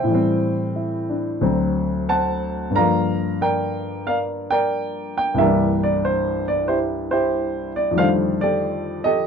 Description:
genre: solo jazz.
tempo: 92 BPM.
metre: 4/4.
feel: swing 68% on 8ths, rubato.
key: unclear.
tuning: A4 = 441 Hz.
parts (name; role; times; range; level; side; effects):
warm baby grand piano; solo; 0.0-9.3 s; C2 to Bb5; -19 LUFS; equal; none.
room: light reverb.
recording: dark, warm production.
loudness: -19 LUFS.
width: side -6 dB against mid.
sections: 0.0-9.3 A section.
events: none.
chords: 0.1 Am7; 1.4 D7; 2.7 Gm7; 5.4 C9; 8.0 F13.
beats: | 0.09 0.75 1.41 2.08 | 2.75 3.41 4.07 4.73 | 5.39 6.03 6.68 7.32 | 7.96 8.61 9.25.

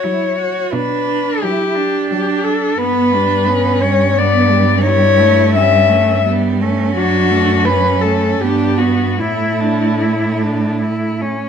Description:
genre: classical, lyrical piece for cello ensemble.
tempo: 73-89 BPM.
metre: 3/4.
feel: rubato.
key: unclear.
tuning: A4 = 438 Hz.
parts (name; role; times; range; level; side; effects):
warm cello; melody; 0.0-10.8 s; E4 to E5; -16 LUFS; left 6 dB; none.
rich cello; second line; 0.0-11.2 s; A3 to F#4; -20 LUFS; right 9 dB; none.
warm cello; accompaniment; 0.0-11.5 s; F#3 to E4; -20 LUFS; left 2 dB; none.
rich cello; bass; 0.7-11.4 s; F#2 to B2; -18 LUFS; right 2 dB; none.
room: moderate recital hall reverb, RT60 1.5 s.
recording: close, detailed microphones.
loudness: -12 LUFS.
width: side -7 dB against mid.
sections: 0.0-11.5 A section.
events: none.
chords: 0.0 F#5; 0.7 Bm; 2.8 G; 4.8 A7/G; 6.9 D/F#; 8.4 Gmaj7; 9.2 Asus4; 10.8 A.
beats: 0.04 | 0.74 1.42 2.10 | 2.79 3.47 4.16 | 4.85 5.54 6.24 | 6.95 7.67 8.40 | 9.20 10.01 10.81.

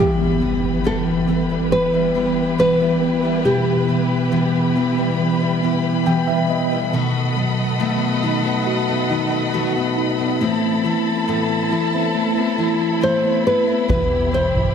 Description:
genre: pop ballad.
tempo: 69 BPM.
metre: 4/4.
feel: straight.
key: E harmonic minor.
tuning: A4 = 444 Hz.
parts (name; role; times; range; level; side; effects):
nylon-string guitar; melody; 0.0-6.0, 13.0-14.7 s; G4 to C5; -20 LUFS; equal; none.
tine electric piano; accompaniment; 0.0-14.7 s; B2 to G5; -20 LUFS; right 2 dB; medium stereo tremolo.
warm studio string section; sustained chords; 0.0-14.7 s; E4 to B5; -24 LUFS; left 1 dB; none.
picked steel-string acoustic guitar; arpeggios; 0.0-14.7 s; E2 to F#4; -24 LUFS; left 6 dB; none.
impact; sound effects; 0.0-3.5 s; none; -27 LUFS; equal; none.
vintage muted fingered electric bass; bass; 13.9-14.7 s; E1 to G1; -24 LUFS; equal; none.
soft-mallet drum kit; drums; 13.9-14.7 s; kick drum, toms; -22 LUFS; equal; none.
room: light reverb, small room reverb.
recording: none.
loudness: -16 LUFS.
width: side -7 dB against mid.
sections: 0.0-14.7 A section.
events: impact 0.0-3.5; tine electric piano fill 5.6-6.9.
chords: 0.0 Em; 6.9 B7; 10.4 Amadd9; 13.9 Em.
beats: 0.85 1.72 2.59 | 3.46 4.33 5.20 6.07 | 6.94 7.81 8.68 9.54 | 10.41 11.28 12.15 13.02 | 13.89.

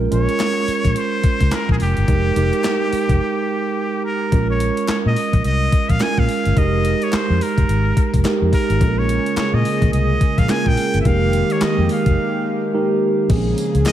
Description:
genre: R&B, new jack swing.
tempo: 107 BPM.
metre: 4/4.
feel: swing 61% on 16ths.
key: unclear.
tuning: A4 = 440 Hz.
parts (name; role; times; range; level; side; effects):
mellow tine electric piano; accompaniment; 0.0-13.9 s; F3 to Bb4; -20 LUFS; right 4 dB; none.
vintage muted fingered electric bass; bass; 0.0-13.8 s; F1 to Bb2; -19 LUFS; left 1 dB; none.
trumpet with straight mute; melody; 0.1-13.9 s; G4 to Ab5; -24 LUFS; equal; ping-pong delay.
crisp 8-bit digital drum machine; drums; 0.1-13.9 s; crash cymbal, handclaps, hi-hat, kick drum, snare drum, tambourine; -20 LUFS; left 1 dB; overdrive.
group handclap; percussion; 0.4-13.9 s; none; -38 LUFS; left 3 dB; none.
warm analog pad; sustained chords; 8.8-13.9 s; Db3 to Ab4; -23 LUFS; left 2 dB; chorus.
room: moderate plate reverb, RT60 1.3 s, digital ambience.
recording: dreamy mix soaked in reverb.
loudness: -15 LUFS.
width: side -11 dB against mid.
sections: 0.0-4.3 A section; 4.3-13.3 B section.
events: break 3.2-4.3, 12.2-13.3.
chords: 0.0 Bbm7; 2.1 Fm11; 4.3 Bbm7; 6.6 Fm11; 8.8 Bbm7; 11.1 Fm11; 13.3 Bbm7.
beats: 0.40 0.96 1.52 | 2.08 2.64 3.20 3.76 | 4.32 4.88 5.44 6.00 | 6.57 7.13 7.69 8.25 | 8.81 9.37 9.93 10.49 | 11.05 11.61 12.17 12.73 | 13.29 13.86.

